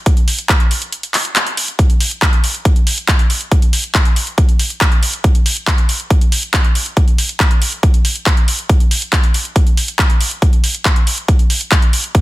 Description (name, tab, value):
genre	trance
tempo	139 BPM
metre	4/4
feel	straight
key	none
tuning	none
part	big-room dance drum kit	drums	0.1-12.2 s	handclaps, hi-hat	-17 LUFS	equal	overdrive, sidechain pumping on hats, studio reverb
part	electronic kick drum	drums	0.1-12.2 s	none	-12 LUFS	equal	overdrive, studio reverb
room	digital ambience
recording	dense, heavily limited modern master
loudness	-12 LUFS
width	side -17 dB against mid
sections	0.0-12.2 A section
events	break 0.9-1.8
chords	none